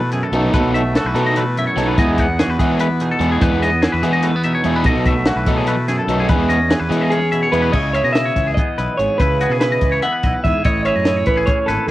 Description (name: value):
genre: math rock and midwest emo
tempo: 291 BPM (eighths)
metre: 7/8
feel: straight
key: E major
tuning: A4 = 440 Hz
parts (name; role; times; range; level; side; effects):
- twangy electric guitar; accompaniment; 0.0-11.9 s; E2 to B4; -22 LUFS; right 3 dB; cassette tape
- twangy electric guitar; arpeggios; 0.0-11.9 s; F#4 to F#5; -22 LUFS; left 3 dB; cassette tape
- fuzz fingered electric bass; bass; 0.0-11.9 s; G#1 to E3; -22 LUFS; equal; overdrive
- compact cocktail drum kit; drums; 0.1-11.9 s; crash cymbal, hi-hat, kick drum, snare drum; -19 LUFS; equal; none
- crunchy overdriven guitar; riff; 0.3-7.7 s; F#3 to A4; -19 LUFS; equal; cassette tape
- electric guitar through a small old amp; melody; 7.1-11.9 s; G#4 to F#5; -19 LUFS; right 1 dB; cassette tape
room: small room ambience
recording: home recording on cassette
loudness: -14 LUFS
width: side -15 dB against mid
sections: 0.0-7.7 A section; 7.7-11.9 B section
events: none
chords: 0.0 B7sus4; 2.0 Emaj7; 4.9 B7sus4; 6.3 E6; 7.7 C#m7; 10.6 Amaj9